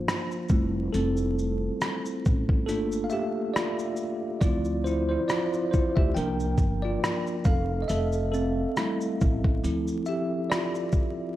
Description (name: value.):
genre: lo-fi hip hop.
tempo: 69 BPM.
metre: 4/4.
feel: swing 56% on 16ths.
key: D minor.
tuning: A4 = 440 Hz.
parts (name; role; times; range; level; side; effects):
bell-like tine electric piano; accompaniment; 0.0-11.4 s; F3 to G5; -28 LUFS; equal; fast stereo tremolo, cassette tape.
dusty soul sampler-style drum kit; drums; 0.1-11.2 s; hi-hat, kick drum, rim click, shaker; -26 LUFS; equal; none.
upright bass; bass; 0.5-10.0 s; F1 to D2; -29 LUFS; equal; none.
room: light reverb.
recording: vinyl crackle.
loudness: -24 LUFS.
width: side -14 dB against mid.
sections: 0.0-11.4 A section.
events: tine electric piano solo 0.0-11.4.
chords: 0.5 Fmaj7; 2.7 Gm9; 4.4 Dm9; 6.1 C9sus4; 7.5 Fmaj7; 9.6 Dm7.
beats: 0.06 | 0.93 1.80 2.67 3.54 | 4.41 5.28 6.15 7.02 | 7.89 8.76 9.63 10.50.